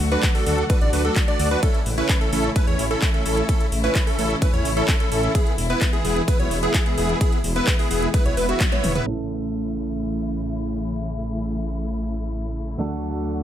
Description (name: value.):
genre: EDM, festival progressive house.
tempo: 129 BPM.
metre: 4/4.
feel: straight.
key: A major.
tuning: A4 = 442 Hz.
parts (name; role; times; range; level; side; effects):
dark studio string section; sustained chords; 0.0-13.4 s; B2 to F#4; -29 LUFS; left 2 dB; sidechain pumping.
wide detuned saw bass; bass; 0.0-13.4 s; E1 to E2; -26 LUFS; equal; chorus, sidechain pumping.
house drum kit; drums; 0.0-9.2 s; crash cymbal, handclaps, hi-hat, ride cymbal, toms; -28 LUFS; equal; overdrive.
plucky unison lead; arpeggios; 0.1-9.0 s; F#4 to D5; -27 LUFS; equal; sidechain pumping, digital delay.
big supersaw lead; riff; 0.1-9.0 s; B3 to D5; -25 LUFS; right 1 dB; vintage 12-bit sampler grit, sidechain pumping, digital delay.
electronic kick drum; drums; 0.2-8.7 s; none; -20 LUFS; equal; overdrive.
fingerpicked steel-string acoustic guitar; accompaniment; 9.1-13.4 s; A3 to A4; -28 LUFS; right 2 dB; sidechain pumping, digital delay.
downlifter; sound effects; 9.4-12.8 s; none; -54 LUFS; equal; none.
room: little or no reverb.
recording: low-pass filter.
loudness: -19 LUFS.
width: side -10 dB against mid.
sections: 0.0-9.1 A section; 9.1-13.4 B section.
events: drop 0.0-9.1; drum fill 8.6-9.1; band accent 8.6; filter sweep 9.1-13.4.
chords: 0.0 D; 1.6 A; 5.3 E; 9.1 A; 12.8 D.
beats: 0.23 0.70 1.16 | 1.63 2.09 2.56 3.02 | 3.49 3.95 4.42 4.88 | 5.35 5.82 6.28 6.75 | 7.21 7.67 8.14 8.61 | 9.07 9.54 10.00 10.47 | 10.93 11.40 11.86 12.33 | 12.79 13.26.